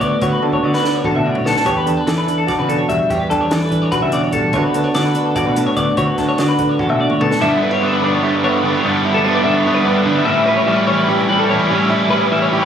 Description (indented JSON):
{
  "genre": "math rock and midwest emo",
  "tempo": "293 BPM (eighths)",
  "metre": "7/8",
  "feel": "straight",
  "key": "D major",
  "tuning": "A4 = 440 Hz",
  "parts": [
    { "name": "direct-recorded clean electric guitar", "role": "accompaniment", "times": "0.0-12.7 s", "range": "D2 to A4", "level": "-18 LUFS", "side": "right 2 dB", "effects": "vibrato effect" },
    { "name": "twelve-string electric guitar", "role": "arpeggios", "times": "0.0-12.7 s", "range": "A4 to E5", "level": "-19 LUFS", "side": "left 4 dB", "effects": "none" },
    { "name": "growling picked electric bass", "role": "bass", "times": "0.0-7.3 s", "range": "A1 to E3", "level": "-21 LUFS", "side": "left 1 dB", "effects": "overdrive" },
    { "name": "compact cocktail drum kit", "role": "drums", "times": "0.0-7.4 s", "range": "hi-hat, kick drum, snare drum, toms", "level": "-25 LUFS", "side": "left 1 dB", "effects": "none" },
    { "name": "overdriven electric guitar", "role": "riff", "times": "7.4-12.7 s", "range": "G2 to E4", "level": "-16 LUFS", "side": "equal", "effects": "none" }
  ],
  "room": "light reverb",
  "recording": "recorded on a phone in the room, studio reverb",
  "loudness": "-13 LUFS",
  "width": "side -8 dB against mid",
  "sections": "0.0-7.4 A section; 7.4-12.7 B section",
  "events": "drum fill 0.4-1.7, 6.8-7.4",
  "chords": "0.0 D6; 1.7 Em7; 4.5 D6; 7.4 G6; 10.3 A7"
}